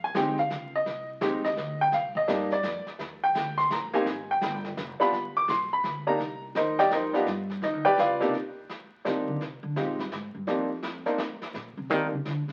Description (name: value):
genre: jazz piano trio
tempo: 168 BPM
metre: 3/4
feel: swing 64% on 8ths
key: C minor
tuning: A4 = 440 Hz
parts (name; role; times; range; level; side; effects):
- bright upright piano; melody; 0.0-12.1 s; C3 to D6; -28 LUFS; equal; none
- upright bass; bass; 0.0-12.5 s; F1 to Eb3; -38 LUFS; equal; none
- jazz brush drum kit; drums; 0.1-12.5 s; brushed snare drum, hi-hat, kick drum, snare drum; -39 LUFS; equal; none
room: moderate studio reverb, RT60 0.8 s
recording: very old 78 rpm record, vinyl crackle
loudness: -28 LUFS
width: mono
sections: 0.0-8.3 A section; 8.3-12.5 A section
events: upright piano solo 0.0-8.3; upright bass solo 8.3-12.5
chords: 0.0 Fm9 (rootless); 1.9 Cm9; 4.1 Fmadd9; 5.1 G; 6.2 Cm9; 7.3 G7; 8.3 Cm9; 9.4 Fmadd9 (rootless); 10.5 Cm9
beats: 0.15 0.50 | 0.86 1.21 1.57 | 1.93 2.28 2.64 | 3.00 3.35 3.71 | 4.06 4.42 4.78 | 5.13 5.49 5.84 | 6.20 6.56 6.91 | 7.27 7.62 7.98 | 8.34 8.69 9.05 | 9.40 9.76 10.12 | 10.47 10.83 11.19 | 11.54 11.90 12.25